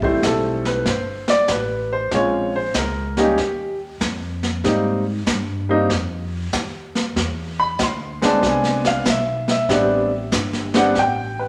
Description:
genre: jazz piano trio.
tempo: 95 BPM.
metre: 4/4.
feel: swing 67% on 8ths.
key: unclear.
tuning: A4 = 440 Hz.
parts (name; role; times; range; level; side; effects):
clear upright piano; melody; 0.0-11.5 s; G3 to C6; -21 LUFS; equal; none.
upright bass; bass; 0.0-11.5 s; G1 to Ab2; -30 LUFS; equal; none.
jazz brush drum kit; drums; 0.0-11.5 s; brushed snare drum, hi-hat, kick drum, snare drum; -26 LUFS; equal; none.
room: wet large studio reverb, RT60 1.2 s.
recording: none.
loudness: -20 LUFS.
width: mono.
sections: 0.0-11.5 A section.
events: upright piano solo 0.0-11.5.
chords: 0.0 Am9; 2.1 Bbm9; 3.4 Ebsus2; 4.6 Abmaj9; 7.2 E7b13; 9.7 Am11.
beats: 0.24 0.87 1.50 | 2.13 2.75 3.38 4.01 | 4.64 5.28 5.91 6.54 | 7.17 7.80 8.43 9.07 | 9.70 10.33 10.96.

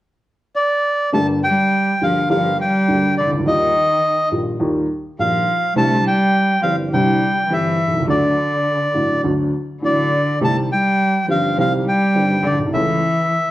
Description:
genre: tango.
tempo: 104 BPM.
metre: 4/4.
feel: rubato.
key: G minor.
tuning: A4 = 438 Hz.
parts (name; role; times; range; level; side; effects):
bandoneon; melody; 0.6-13.5 s; D5 to A5; -18 LUFS; equal; slapback echo.
warm cello; second line; 1.1-13.5 s; D3 to A3; -21 LUFS; equal; none.
warm upright piano; accompaniment; 1.1-13.0 s; G1 to A4; -20 LUFS; equal; none.
room: moderate large studio reverb, RT60 1.2 s.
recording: worn, warbling old tape, cassette tape, warbly pitch drift.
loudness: -15 LUFS.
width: side -15 dB against mid.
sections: 0.0-1.1 A section; 1.1-13.5 B section.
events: none.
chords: 0.0 N.C.; 1.1 Gm; 3.5 Ebadd9; 5.8 Cadd9; 8.1 D; 10.4 Cm; 12.7 A/C#.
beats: 0.56 | 1.14 1.73 2.31 2.89 | 3.47 4.04 4.61 5.19 | 5.77 6.35 6.93 7.51 | 8.09 8.67 9.25 9.84 | 10.42 11.01 11.59 12.17 | 12.74 13.32.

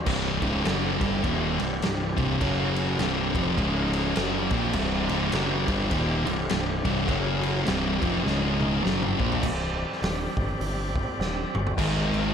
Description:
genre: stoner and doom metal.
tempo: 103 BPM.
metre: 4/4.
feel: swing 60% on 8ths.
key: C minor.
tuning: A4 = 440 Hz.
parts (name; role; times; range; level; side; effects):
bright tonewheel organ; sustained chords; 0.0-12.3 s; F#3 to Eb5; -33 LUFS; equal; slow rotary speaker, overdrive.
thick fuzz guitar; riff; 0.1-12.3 s; C2 to Bb3; -25 LUFS; equal; distortion.
growling picked electric bass; bass; 0.1-12.3 s; C1 to Bb1; -31 LUFS; equal; overdrive.
raw garage drum kit; drums; 0.1-12.2 s; crash cymbal, hi-hat, kick drum, ride cymbal, snare drum, toms; -29 LUFS; equal; none.
room: light reverb.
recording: none.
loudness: -23 LUFS.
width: side -7 dB against mid.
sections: 0.0-9.4 A section; 9.4-11.8 B section.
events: drum fill 8.3-9.4, 11.2-11.8.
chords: 0.0 Cm; 2.4 F#5; 3.0 C5; 3.6 Db5; 4.2 Cm; 7.1 F#5; 7.7 C5; 8.3 Db5; 8.8 C5; 9.4 Cm; 11.8 Ab5.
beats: | 0.07 0.65 1.24 1.82 | 2.40 2.99 3.57 4.16 | 4.74 5.33 5.91 6.50 | 7.08 7.67 8.25 8.84 | 9.43 10.01 10.60 11.19 | 11.78.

